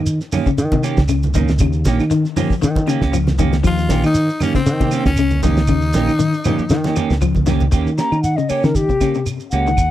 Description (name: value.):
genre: afrobeat.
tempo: 117 BPM.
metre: 4/4.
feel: swing 55% on 16ths.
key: Eb mixolydian.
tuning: A4 = 439 Hz.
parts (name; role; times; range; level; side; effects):
electric guitar at the edge of break-up; arpeggios; 0.0-9.9 s; C3 to F3; -22 LUFS; left 8 dB; spring reverb.
fingered electric bass; bass; 0.0-9.9 s; Bb1 to Eb3; -18 LUFS; equal; none.
damped 70s drum kit; drums; 0.1-9.9 s; hi-hat, kick drum, snare drum, toms; -20 LUFS; equal; none.
shekere; percussion; 0.1-9.9 s; none; -27 LUFS; right 2 dB; none.
clean electric guitar; stabs; 0.3-9.7 s; Eb3 to G4; -22 LUFS; right 7 dB; lush chorus.
claves; percussion; 0.3-9.9 s; none; -37 LUFS; right 10 dB; none.
congas; percussion; 0.3-7.7 s; none; -24 LUFS; right 3 dB; none.
raspy tenor saxophone; melody; 3.7-7.2 s; C4 to F4; -23 LUFS; left 2 dB; none.
hollow concert flute; melody; 8.0-9.9 s; G4 to Bb5; -19 LUFS; left 2 dB; none.
room: little or no reverb.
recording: dry, close 1970s-style studio recording.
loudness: -14 LUFS.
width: side -13 dB against mid.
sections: 0.0-7.7 A section; 7.7-9.9 B section.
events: drum fill 5.7-7.7; flute solo 7.7-9.9.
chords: 0.0 Eb7.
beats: 0.06 0.57 1.08 | 1.60 2.11 2.62 3.13 | 3.64 4.15 4.66 5.17 | 5.68 6.20 6.71 7.22 | 7.73 8.24 8.75 9.27 | 9.78.